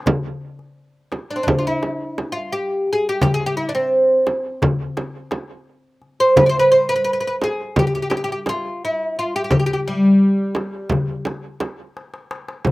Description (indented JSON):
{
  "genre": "Turkish makam ensemble",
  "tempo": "172 BPM (eighths)",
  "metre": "9/8",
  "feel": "straight",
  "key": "G makam hicaz",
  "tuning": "A4 = 440 Hz",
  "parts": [
    { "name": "oud", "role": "melody", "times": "0.0-11.1 s", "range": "G3 to D5", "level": "-17 LUFS", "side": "equal", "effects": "none" },
    { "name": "darbuka", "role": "percussion", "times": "0.1-12.7 s", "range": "none", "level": "-23 LUFS", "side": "left 2 dB", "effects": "none" },
    { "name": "frame drum", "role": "percussion", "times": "0.1-12.7 s", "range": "none", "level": "-22 LUFS", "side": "right 2 dB", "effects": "none" }
  ],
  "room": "light reverb",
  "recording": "recorded outdoors, with no room sound",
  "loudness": "-17 LUFS",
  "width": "side -20 dB against mid",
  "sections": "0.0-12.7 A section",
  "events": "drum fill 12.0-12.7",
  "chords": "none"
}